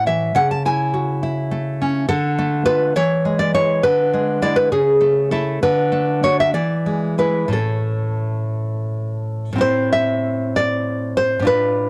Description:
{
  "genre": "romantic piece for solo classical guitar",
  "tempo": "56-72 BPM (dotted quarters)",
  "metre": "6/8",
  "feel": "rubato",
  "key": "A major",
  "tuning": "A4 = 440 Hz",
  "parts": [
    { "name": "nylon-string guitar", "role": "solo", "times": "0.0-11.9 s", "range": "A2 to A5", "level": "-19 LUFS", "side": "equal", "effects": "none" }
  ],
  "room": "light reverb",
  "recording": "dry, gritty hardware recording, cassette tape",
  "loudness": "-19 LUFS",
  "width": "mono",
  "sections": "0.0-9.6 A section; 9.6-11.9 B section",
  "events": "none",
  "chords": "0.4 A/C#; 2.1 Dm; 3.0 E; 3.8 E7/D; 4.7 A/C#; 5.6 Bm7/D; 6.5 E7; 7.5 A; 9.6 Am"
}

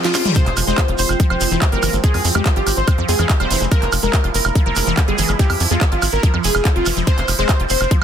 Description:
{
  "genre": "psychedelic trance",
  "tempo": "143 BPM",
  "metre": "4/4",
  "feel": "straight",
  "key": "F harmonic minor",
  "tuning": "A4 = 440 Hz",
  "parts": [
    { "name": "wide unison lead", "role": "melody", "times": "0.0-8.0 s", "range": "F4 to C5", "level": "-22 LUFS", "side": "equal", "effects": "phaser, sidechain pumping, dub echo" },
    { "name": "bubbling stepped-filter texture", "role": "sustained chords", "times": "0.0-8.0 s", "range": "F3 to E4", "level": "-27 LUFS", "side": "right 3 dB", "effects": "chorus, built-in reverb, sidechain pumping" },
    { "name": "wide unison pluck", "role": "riff", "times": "0.0-8.0 s", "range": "E3 to G4", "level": "-24 LUFS", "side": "moving between left 4 dB and right 4 dB", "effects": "auto-pan, sidechain pumping, dub echo" },
    { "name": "techno drum kit", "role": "drums", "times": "0.0-8.0 s", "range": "handclaps, hi-hat, snare drum, toms, woodblock", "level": "-21 LUFS", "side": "right 2 dB", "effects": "none" },
    { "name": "shekere", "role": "percussion", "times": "0.1-8.0 s", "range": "none", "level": "-28 LUFS", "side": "right 5 dB", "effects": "none" },
    { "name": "electronic kick drum", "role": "drums", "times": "0.4-8.0 s", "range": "none", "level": "-16 LUFS", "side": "equal", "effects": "overdrive" },
    { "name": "tight sequencer bass", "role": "bass", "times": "0.5-8.0 s", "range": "F1 to F2", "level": "-20 LUFS", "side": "equal", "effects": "none" }
  ],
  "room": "little or no reverb",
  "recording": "dense, heavily limited modern master",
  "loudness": "-14 LUFS",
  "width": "side -9 dB against mid",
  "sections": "0.0-8.0 A section",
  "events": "break 0.0-0.4; drum fill 0.0-0.4",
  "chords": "0.0 F5"
}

